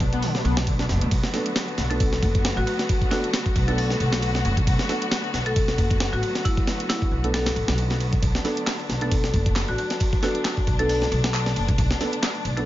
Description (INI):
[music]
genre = breakbeat, breaks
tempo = 135 BPM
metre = 4/4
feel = swing 55% on 16ths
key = B minor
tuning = A4 = 440 Hz
[part]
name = clear studio string section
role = sustained chords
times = 0.0-12.7 s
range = D3 to F#4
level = -30 LUFS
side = left 1 dB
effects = sidechain pumping
[part]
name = screaming distorted acid line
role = riff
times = 0.0-1.1 s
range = B1 to D4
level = -29 LUFS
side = left 2 dB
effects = distortion, wide subtle chorus, ping-pong delay
[part]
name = upright bass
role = bass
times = 0.0-12.7 s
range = F#1 to D2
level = -25 LUFS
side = equal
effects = none
[part]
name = breakbeat sampler-style drum kit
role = drums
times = 0.0-12.6 s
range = hi-hat, kick drum, ride cymbal, snare drum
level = -24 LUFS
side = equal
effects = none
[part]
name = house drum kit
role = drums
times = 0.1-12.7 s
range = handclaps, hi-hat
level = -35 LUFS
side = equal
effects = none
[part]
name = dark concert grand piano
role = stabs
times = 1.3-12.7 s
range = B3 to A4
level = -30 LUFS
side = right 3 dB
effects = ping-pong delay
[part]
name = marimba with hard mallets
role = melody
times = 1.9-12.7 s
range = E4 to A4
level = -30 LUFS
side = left 2 dB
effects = telephone sound, vintage 12-bit sampler grit, ping-pong delay
[sound]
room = little or no reverb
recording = nothing above 7.5 kHz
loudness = -20 LUFS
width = side -14 dB against mid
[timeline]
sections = 0.0-12.7 A section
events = none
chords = 0.0 Bm7